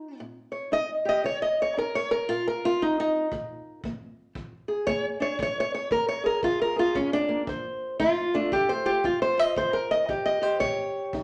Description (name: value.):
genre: acoustic country blues, solo or duo.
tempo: 115 BPM.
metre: 4/4.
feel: swing 61% on 8ths.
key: unclear.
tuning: A4 = 440 Hz.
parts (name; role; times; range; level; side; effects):
fingerpicked old ladder-braced acoustic guitar; melody; 0.0-11.2 s; F2 to Eb5; -26 LUFS; equal; none.
kick drum; drums; 3.3-11.2 s; none; -45 LUFS; equal; none.
room: moderate large studio reverb, RT60 0.8 s.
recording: none.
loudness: -26 LUFS.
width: mono.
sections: 0.0-11.2 A section.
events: steel-string acoustic guitar solo 0.0-11.2.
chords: 0.0 Eb7(no3); 3.3 Bb7(no3); 7.5 F; 9.6 Eb7.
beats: 0.21 0.73 | 1.25 1.76 2.28 2.80 | 3.32 3.84 4.36 4.88 | 5.40 5.92 6.45 6.97 | 7.49 8.01 8.53 9.05 | 9.58 10.10 10.62 11.14.